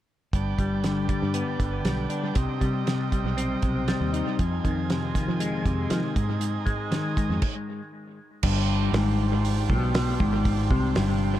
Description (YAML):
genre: psychedelic rock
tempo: 119 BPM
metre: 4/4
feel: straight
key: G phrygian dominant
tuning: A4 = 439 Hz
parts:
  - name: overdriven combo organ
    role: sustained chords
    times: 0.3-11.4 s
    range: F3 to Ab5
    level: -34 LUFS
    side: right 10 dB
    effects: none
  - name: semi-hollow electric guitar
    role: riff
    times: 0.3-11.4 s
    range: F2 to Eb4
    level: -26 LUFS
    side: left 2 dB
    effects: rotary speaker, analog delay
  - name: fingered electric bass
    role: bass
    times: 0.3-11.4 s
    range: G1 to F3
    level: -29 LUFS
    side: right 1 dB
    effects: none
  - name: damped 70s drum kit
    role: drums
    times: 0.3-11.1 s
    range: crash cymbal, hi-hat, kick drum, snare drum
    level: -28 LUFS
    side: right 1 dB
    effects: analog delay
room: light reverb, small room reverb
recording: echo-heavy mix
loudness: -23 LUFS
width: side -13 dB against mid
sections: 0.3-8.4 A section; 8.4-11.4 B section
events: stop 7.4-8.4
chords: 0.3 G; 2.4 Cm; 4.4 Fm7; 8.4 G7sus4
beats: | 0.34 0.85 1.35 1.86 | 2.37 2.87 3.38 3.89 | 4.39 4.90 5.41 5.91 | 6.42 6.92 7.43 7.93 | 8.44 8.94 9.45 9.95 | 10.46 10.96